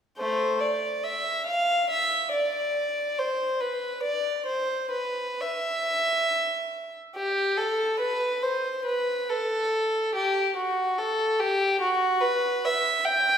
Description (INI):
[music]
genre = classical, baroque-style suite movement for unaccompanied violin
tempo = 70 BPM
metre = 4/4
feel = rubato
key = A minor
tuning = A4 = 440 Hz
[part]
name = rich violin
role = solo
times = 0.2-13.4 s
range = A3 to G5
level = -24 LUFS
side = equal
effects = none
[sound]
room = wet recital hall reverb, RT60 1.7 s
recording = heard from further back in the room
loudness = -24 LUFS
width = side -8 dB against mid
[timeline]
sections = 0.2-13.4 A section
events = none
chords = none